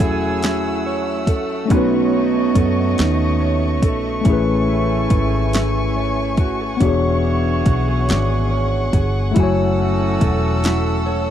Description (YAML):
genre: slow six-eight R&B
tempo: 47 BPM (dotted quarters)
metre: 6/8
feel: straight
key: A major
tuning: A4 = 441 Hz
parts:
  - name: mellow electric guitar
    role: second line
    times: 0.0-11.3 s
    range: E3 to C#5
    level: -23 LUFS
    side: right 8 dB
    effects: spring reverb
  - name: tine electric piano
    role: accompaniment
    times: 0.0-11.3 s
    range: A3 to G#5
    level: -22 LUFS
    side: left 8 dB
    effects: none
  - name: dark chamber string section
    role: sustained chords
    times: 0.0-11.3 s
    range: A3 to E6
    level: -27 LUFS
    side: left 1 dB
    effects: none
  - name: mellow horn section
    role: stabs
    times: 0.0-11.3 s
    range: E3 to G#5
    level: -26 LUFS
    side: right 4 dB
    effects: none
  - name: vintage muted fingered electric bass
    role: bass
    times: 0.0-11.3 s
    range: E1 to F#2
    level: -21 LUFS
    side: equal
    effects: none
  - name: smooth R&B drum kit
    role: drums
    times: 0.0-10.8 s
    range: hi-hat, kick drum, snare drum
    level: -17 LUFS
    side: equal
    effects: none
room: little or no reverb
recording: dry, close 1970s-style studio recording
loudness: -15 LUFS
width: side -10 dB against mid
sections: 0.0-11.3 A section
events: none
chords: 0.0 F#m7; 1.7 B9; 4.3 Amaj7; 6.8 E13; 9.4 F#m7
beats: 0.42 | 1.70 2.98 | 4.25 5.53 | 6.81 8.08 | 9.36 10.64